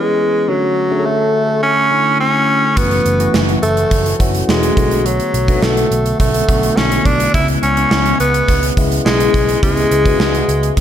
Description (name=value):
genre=1980s-style pop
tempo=105 BPM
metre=4/4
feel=straight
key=unclear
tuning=A4 = 440 Hz
part: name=raspy tenor saxophone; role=melody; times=0.0-10.7 s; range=F#3 to E4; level=-15 LUFS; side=equal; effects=slapback echo
part: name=barky tine electric piano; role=accompaniment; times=0.0-10.8 s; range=C#3 to A4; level=-19 LUFS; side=left 2 dB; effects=phaser, slapback echo
part: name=vintage muted picked electric bass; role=bass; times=2.8-10.8 s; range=E1 to C#2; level=-19 LUFS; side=equal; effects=none
part: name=gated 80s drum kit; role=drums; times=2.8-10.8 s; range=hi-hat, kick drum, snare drum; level=-17 LUFS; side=right 1 dB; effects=none
room=moderate lush hall reverb, RT60 2.0 s, small room ambience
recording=big arena sound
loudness=-12 LUFS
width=side -10 dB against mid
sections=0.0-10.8 A section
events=none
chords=0.5 Dmaj7; 2.8 F#m7; 4.8 Bm7; 7.3 C#m7